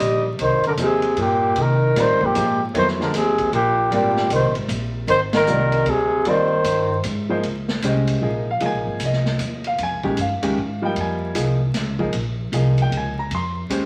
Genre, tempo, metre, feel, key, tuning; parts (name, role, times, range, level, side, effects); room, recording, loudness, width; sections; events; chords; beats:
modal jazz; 153 BPM; 3/4; swing 64% on 8ths; Bb dorian from 7.4 s; A4 = 440 Hz
breathy trumpet; melody; 0.0-7.1 s; G4 to Eb5; -23 LUFS; equal
breathy tenor saxophone; second line; 0.0-7.1 s; Bb2 to G3; -24 LUFS; equal
clear grand piano; accompaniment; 0.0-13.9 s; D3 to C6; -27 LUFS; equal
upright bass; bass; 0.0-13.9 s; F1 to C3; -26 LUFS; equal
swinging big-band drum kit; drums; 0.0-13.8 s; hi-hat, kick drum, ride cymbal, snare drum; -33 LUFS; equal
wet studio reverb, RT60 0.9 s; vinyl crackle; -20 LUFS; mono
0.0-7.4 A section; 7.4-13.9 B section
band accent 5.3
0.0 Fm11; 2.7 Abadd9; 7.4 Bbm11
0.01 | 0.40 0.79 1.18 | 1.57 1.96 2.35 | 2.75 3.14 3.53 | 3.92 4.31 4.70 | 5.09 5.49 5.88 | 6.27 6.66 7.05 | 7.44 7.83 8.22 | 8.62 9.01 9.40 | 9.79 10.18 10.57 | 10.97 11.36 11.75 | 12.14 12.53 12.93 | 13.32 13.71